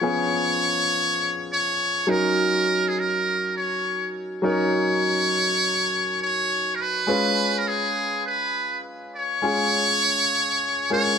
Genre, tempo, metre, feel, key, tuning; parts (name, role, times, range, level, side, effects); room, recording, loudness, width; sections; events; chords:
R&B; 102 BPM; 4/4; swing 65% on 16ths; A4 = 443 Hz
trumpet with metal mute; melody; 0.0-11.2 s; Ab4 to Db5; -22 LUFS; equal
clear baby grand piano; accompaniment; 0.0-11.2 s; F3 to Cb5; -25 LUFS; left 1 dB
moderate plate reverb, RT60 2.8 s; -20 LUFS; side -7 dB against mid
0.0-11.2 A section
0.0 Db7; 2.1 Ebm7; 7.1 Db7